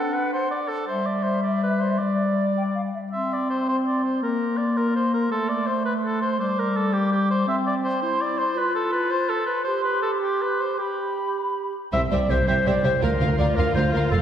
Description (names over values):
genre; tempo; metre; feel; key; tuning
cinematic; 110 BPM (dotted quarters); 12/8; straight; C major; A4 = 441 Hz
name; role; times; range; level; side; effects
clear clarinet; second line; 0.0-14.2 s; G3 to E5; -24 LUFS; left 1 dB; none
hollow concert flute; second line; 0.0-11.7 s; D5 to D6; -29 LUFS; equal; none
warm oboe; second line; 0.0-11.4 s; G4 to E5; -26 LUFS; right 1 dB; none
rich symphonic violin section; melody; 11.9-14.2 s; E5 to F5; -34 LUFS; left 2 dB; none
warm symphonic violin section; second line; 11.9-14.2 s; F4 to C5; -31 LUFS; left 2 dB; none
rich symphonic cello section; bass; 11.9-14.2 s; C2 to F2; -25 LUFS; right 2 dB; none
rich symphonic double bass section; bass; 11.9-14.2 s; F1 to D2; -24 LUFS; right 2 dB; none
rich symphonic viola section; accompaniment; 13.0-14.2 s; F4; -29 LUFS; equal; none
room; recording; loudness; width
wet concert hall reverb, RT60 2.1 s; heard from further back in the room; -21 LUFS; side -9 dB against mid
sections
0.0-11.9 A section; 11.9-14.2 A section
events
none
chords
0.0 D; 0.9 G5; 3.1 N.C.; 4.2 Bbsus2; 5.3 Am; 6.4 G5; 7.5 C; 8.6 F5; 9.7 C5/G; 10.8 G; 11.9 C; 13.0 Bb/D